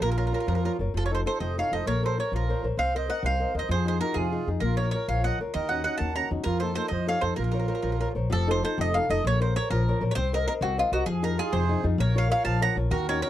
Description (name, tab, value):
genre	italian folk, Italian serenade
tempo	130 BPM (dotted quarters)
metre	6/8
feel	straight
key	Bb harmonic minor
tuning	A4 = 440 Hz
part	mandolin	melody	0.0-13.3 s	F4 to Bb5	-29 LUFS	right 2 dB	none
part	accordion	second line	0.0-8.1, 11.4-13.3 s	F4 to Gb5	-34 LUFS	right 8 dB	none
part	flamenco guitar	accompaniment	0.0-13.3 s	C3 to Eb5	-31 LUFS	left 4 dB	none
part	upright bass	bass	0.0-13.2 s	F1 to F2	-27 LUFS	left 1 dB	none
room	little or no reverb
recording	dry, close 1970s-style studio recording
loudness	-24 LUFS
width	side -12 dB against mid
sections	0.9-8.3 A section; 8.3-13.3 A section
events	none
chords	0.0 Bbm; 0.9 F7; 1.9 Bbmadd9; 2.8 Cm7; 3.7 Fm7; 4.6 Bbm; 5.5 Ebm7; 6.5 F7sus4; 6.9 F7; 7.4 Bbmadd9; 8.3 F7; 9.2 Bbmadd9; 10.2 Cm7b5; 11.1 Fm7; 12.0 Bbm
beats	| 0.01 0.47 | 0.94 1.40 | 1.86 2.32 | 2.77 3.23 | 3.69 4.15 | 4.62 5.08 | 5.54 6.00 | 6.46 6.92 | 7.38 7.85 | 8.31 8.78 | 9.24 9.70 | 10.15 10.61 | 11.07 11.53 | 11.99 12.46 | 12.92